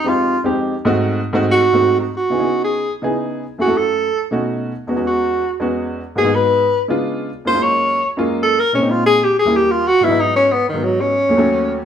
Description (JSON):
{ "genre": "jazz", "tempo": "187 BPM", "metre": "4/4", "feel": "straight", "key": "C# minor", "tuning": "A4 = 440 Hz", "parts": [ { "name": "mellow tenor saxophone", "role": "melody", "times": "0.0-11.8 s", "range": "D#3 to C#5", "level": "-15 LUFS", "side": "equal", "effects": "none" }, { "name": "warm baby grand piano", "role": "accompaniment", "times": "0.0-11.8 s", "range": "D#2 to A4", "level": "-19 LUFS", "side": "equal", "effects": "none" } ], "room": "wet studio reverb, RT60 0.7 s", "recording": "band playing live in one room", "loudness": "-14 LUFS", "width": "side -8 dB against mid", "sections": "0.0-2.1 A section; 2.1-11.8 A section", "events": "tenor saxophone solo 0.0-11.8", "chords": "0.0 Fm9; 0.9 Ab7b9; 2.1 C#m9; 3.4 F#m7; 4.1 B9; 4.7 E69; 6.0 G#m7; 6.7 C#7b9; 7.3 F#maj9; 8.6 A#m7; 9.2 D#7b9; 9.9 G#m7; 11.1 D#m7b5", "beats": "0.21 0.53 | 0.86 1.18 1.50 1.82 | 2.15 2.47 2.79 3.11 | 3.43 3.75 4.08 4.40 | 4.72 5.04 5.36 5.68 | 6.01 6.33 6.65 6.97 | 7.29 7.61 7.93 8.26 | 8.58 8.90 9.22 9.54 | 9.86 10.18 10.50 10.82 | 11.14 11.46 11.78" }